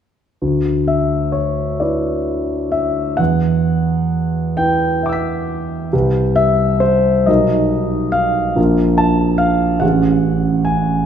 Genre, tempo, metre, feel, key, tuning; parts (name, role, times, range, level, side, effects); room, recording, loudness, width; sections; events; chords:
classical, impressionist solo piano; 44 BPM (dotted quarters); 6/8; uneven beats, rubato; A4 = 440 Hz
clear concert grand piano; solo; 0.4-11.1 s; A1 to B6; -14 LUFS; equal
moderate scoring stage reverb, RT60 1.7 s; minimal, uncompressed stereo recording; -14 LUFS; side -8 dB against mid
0.4-11.1 A section
0.4 Dsus2; 3.2 Em7; 5.9 C5; 7.3 Bmaj7; 8.6 Bb5; 9.8 Amaj7